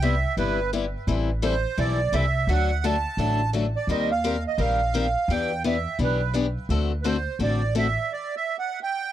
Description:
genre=acoustic string swing (jazz manouche)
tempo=171 BPM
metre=4/4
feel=swing 62% on 8ths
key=unclear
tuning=A4 = 440 Hz
part: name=accordion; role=melody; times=0.0-9.1 s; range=B4 to A5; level=-27 LUFS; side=right 5 dB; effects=light tremolo tuning, tape echo
part: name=picked steel-string acoustic guitar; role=accompaniment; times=0.0-7.9 s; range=C3 to Bb4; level=-26 LUFS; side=left 5 dB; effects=none
part: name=upright bass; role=bass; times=0.0-8.0 s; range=G1 to E2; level=-26 LUFS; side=equal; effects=none
room=light reverb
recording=dry, close 1970s-style studio recording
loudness=-22 LUFS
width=side -12 dB against mid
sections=0.0-9.1 A section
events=stop 8.1-9.1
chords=0.0 Cmaj7; 1.1 Am7; 2.5 D; 3.9 Eb6; 5.3 Em7; 6.7 D7; 8.1 N.C.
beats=0.03 0.38 0.73 | 1.08 1.43 1.78 2.13 | 2.48 2.83 3.19 3.54 | 3.89 4.24 4.59 4.94 | 5.29 5.64 5.99 6.34 | 6.69 7.04 7.39 7.75 | 8.10 8.45 8.80

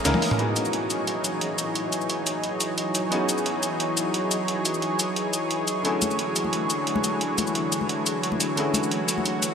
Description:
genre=liquid drum and bass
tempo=176 BPM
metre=4/4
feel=straight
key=unclear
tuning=A4 = 440 Hz
part: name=bright grand piano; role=accompaniment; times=0.0-9.5 s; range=D3 to C#5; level=-30 LUFS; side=left 1 dB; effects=diffuse ambient delay
part: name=lush unison pad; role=sustained chords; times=0.0-9.5 s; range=D3 to D#5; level=-26 LUFS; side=equal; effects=chorus
part: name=breakbeat sampler-style drum kit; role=drums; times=0.1-9.5 s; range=hi-hat, shaker, snare drum, toms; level=-28 LUFS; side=equal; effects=none
part: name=congas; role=percussion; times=0.1-0.2, 6.0-9.2 s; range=none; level=-32 LUFS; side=left 3 dB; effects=none
room=wet cathedral reverb, RT60 6.9 s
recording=dreamy mix soaked in reverb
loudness=-23 LUFS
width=side -6 dB against mid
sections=0.4-9.5 A section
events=drum fill 0.1-0.4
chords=0.4 Emaj13; 5.8 Dmaj9#11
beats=0.05 | 0.39 0.73 1.07 1.42 | 1.75 2.10 2.44 2.78 | 3.12 3.46 3.80 4.14 | 4.48 4.82 5.17 5.50 | 5.85 6.19 6.53 6.87 | 7.21 7.55 7.89 8.23 | 8.57 8.91 9.26

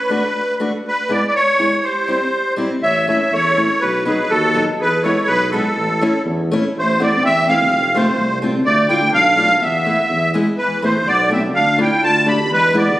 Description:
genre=alpine folk, alpine dance band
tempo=123 BPM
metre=2/4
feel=rubato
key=A major, A minor from 6.8 s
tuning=A4 = 440 Hz
part: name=musette accordion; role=melody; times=0.0-13.0 s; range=A4 to B5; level=-16 LUFS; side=equal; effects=none
part: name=fingerpicked steel-string acoustic guitar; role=accompaniment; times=0.1-12.8 s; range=F#3 to F#4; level=-21 LUFS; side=left 1 dB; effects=none
part: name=warm clarinet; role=second line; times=1.8-13.0 s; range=E3 to C#5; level=-23 LUFS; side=right 1 dB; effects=none
part: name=warm tuba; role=bass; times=2.8-13.0 s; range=F1 to E2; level=-23 LUFS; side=equal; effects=none
room=wet scoring stage reverb, RT60 1.5 s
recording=recorded on a phone in the room, studio reverb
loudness=-14 LUFS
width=side -16 dB against mid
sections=0.0-6.8 A section; 6.8-13.0 B section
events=none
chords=0.0 D; 0.9 E; 1.8 C; 2.8 A; 3.8 B; 4.8 E; 5.8 A; 6.8 Am; 7.7 F; 8.7 Dm; 9.6 Esus4; 10.1 E; 10.6 Esus4; 11.6 Dm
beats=0.36 | 0.85 1.34 | 1.83 2.32 | 2.82 3.32 | 3.82 4.31 | 4.80 5.29 | 5.77 6.27 | 6.76 7.24 | 7.72 8.18 | 8.65 9.13 | 9.61 10.10 | 10.59 11.07 | 11.55 12.03 | 12.50 12.97

